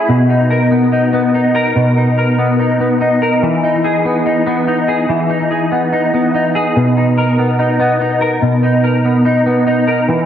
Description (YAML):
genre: dream pop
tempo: 72 BPM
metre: 4/4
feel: straight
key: B major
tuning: A4 = 440 Hz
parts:
  - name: semi-hollow electric guitar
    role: solo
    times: 0.0-10.3 s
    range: B2 to A#4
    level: -11 LUFS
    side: equal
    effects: ensemble chorus, analog delay
room: wet plate reverb, RT60 2.8 s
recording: dreamy mix soaked in reverb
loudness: -11 LUFS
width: side -9 dB against mid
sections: 0.1-10.3 A section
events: none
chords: 0.1 Bmaj7; 3.4 Emaj7